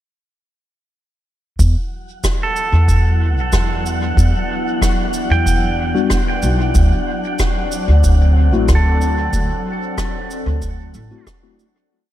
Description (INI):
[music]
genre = ambient dub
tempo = 93 BPM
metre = 4/4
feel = straight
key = E minor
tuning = A4 = 442 Hz
[part]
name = warbly tape-like pad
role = sustained chords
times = 3.1-11.9 s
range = E3 to D5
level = -25 LUFS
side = left 2 dB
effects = chorus, built-in reverb, phaser
[part]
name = upright bass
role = bass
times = 1.6-11.1 s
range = A1 to E2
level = -14 LUFS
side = equal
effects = none
[part]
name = cabasa and rim click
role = drums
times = 1.6-11.7 s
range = none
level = -26 LUFS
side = equal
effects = dub echo
[part]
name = electronic kick drum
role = drums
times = 1.6-11.4 s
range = none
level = -20 LUFS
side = equal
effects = overdrive
[part]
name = wind-like tuned noise texture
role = texture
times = 2.2-11.9 s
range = F#3 to F#5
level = -25 LUFS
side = left 1 dB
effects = built-in reverb
[part]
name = pedal steel guitar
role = arpeggios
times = 2.4-11.3 s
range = A4 to G5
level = -25 LUFS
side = right 4 dB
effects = tape echo
[part]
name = mellow tine electric piano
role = stabs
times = 5.9-11.6 s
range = G3 to F#4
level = -23 LUFS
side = left 5 dB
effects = medium stereo tremolo, dub echo
[sound]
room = studio reverb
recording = none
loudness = -14 LUFS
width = side -13 dB against mid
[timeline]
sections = 1.6-11.9 groove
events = fade-in on ambient pad 1.6-11.9; fade-out 8.5-11.9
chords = 1.6 Em7; 6.8 D7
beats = | 1.59 2.24 2.88 3.53 | 4.17 4.82 5.46 6.11 | 6.75 7.40 8.04 8.69 | 9.34 9.98 10.62 11.27